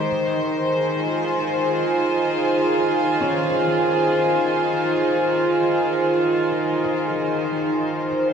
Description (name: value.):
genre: ambient.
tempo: free time.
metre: none.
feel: none.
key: unclear.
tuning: A4 = 440 Hz.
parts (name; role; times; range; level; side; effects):
rich studio string section; sustained chords; 0.0-8.3 s; Eb3 to C5; -18 LUFS; equal; shimmer reverb.
felt-muted upright piano; arpeggios; 0.0-8.3 s; Db4 to Eb5; -36 LUFS; left 1 dB; none.
glass harmonica; texture; 8.1-8.3 s; C5; -22 LUFS; left 1 dB; none.
room: wet cathedral reverb, RT60 5.2 s.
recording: in a vast, echoing space, cassette tape.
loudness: -18 LUFS.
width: side -6 dB against mid.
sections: 0.0-8.1 A section.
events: none.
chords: 0.1 Dbmaj9/Eb.